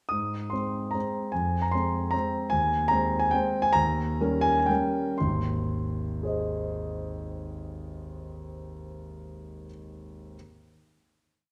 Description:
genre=classical, piano waltz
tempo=113-160 BPM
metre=3/4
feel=rubato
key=Ab major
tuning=A4 = 440 Hz
part: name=warm concert grand piano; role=solo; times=0.1-10.4 s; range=Ab1 to Eb6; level=-28 LUFS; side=equal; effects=none
room=moderate recital hall reverb, RT60 1.7 s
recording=none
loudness=-27 LUFS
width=mono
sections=0.1-5.2 A section; 5.2-8.2 final chord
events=slowing down 1.9-5.2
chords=0.1 Ab; 1.4 Fm; 2.5 Ab/Eb; 3.8 Eb7; 5.2 Ab

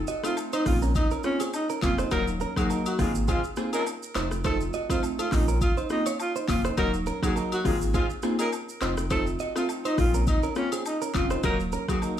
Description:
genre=afrobeats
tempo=103 BPM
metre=4/4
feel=swing 55% on 16ths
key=unclear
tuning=A4 = 440 Hz
part: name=warm sub bass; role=bass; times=0.0-11.8 s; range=Eb1 to Bb1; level=-28 LUFS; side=equal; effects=none
part: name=direct-recorded clean electric guitar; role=riff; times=0.1-12.2 s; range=Bb3 to Eb5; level=-34 LUFS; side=right 7 dB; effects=digital delay
part: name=afro-pop drum kit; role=drums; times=0.1-12.2 s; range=handclaps, hi-hat, kick drum, rim click, shaker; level=-30 LUFS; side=equal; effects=none
part: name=glassy digital keys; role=accompaniment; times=0.2-12.2 s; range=Gb3 to Gb4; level=-30 LUFS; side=left 1 dB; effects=chorus
part: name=agogo bells and woodblock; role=percussion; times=0.2-12.2 s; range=none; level=-38 LUFS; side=left 7 dB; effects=none
part: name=breathy alto saxophone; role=melody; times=0.3-12.0 s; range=Db4 to Bb4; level=-31 LUFS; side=equal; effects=digital delay
part: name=clear horn section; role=second line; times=2.1-12.0 s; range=Bb2 to Ab4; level=-35 LUFS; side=left 2 dB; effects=none
room=light reverb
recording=studio reverb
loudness=-24 LUFS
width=side -10 dB against mid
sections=0.0-12.2 A section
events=none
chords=0.0 F7; 0.7 Bbmadd9; 2.1 Ebm; 3.0 Ab6; 4.2 F7; 5.3 Bbmadd9; 6.8 Ebm; 7.7 Ab6; 8.8 F7; 10.0 Bbmadd9; 11.4 Ebm

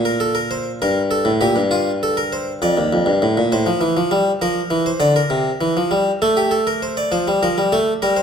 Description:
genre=classical, baroque-style two-part invention for harpsichord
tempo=66 BPM (dotted quarters)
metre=6/8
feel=straight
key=unclear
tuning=A4 = 440 Hz
part: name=harpsichord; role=solo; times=0.0-8.2 s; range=Eb2 to D5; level=-16 LUFS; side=equal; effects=none
room=moderate recital hall reverb, RT60 1.4 s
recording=none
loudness=-16 LUFS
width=side -7 dB against mid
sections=0.0-7.1 A section; 7.1-8.2 B section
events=none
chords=0.0 Bbsus2; 0.8 Gmadd9; 1.7 F; 2.6 Bb; 3.5 F/A; 4.4 Bb; 5.3 C; 6.2 Amadd11; 7.1 Fadd9

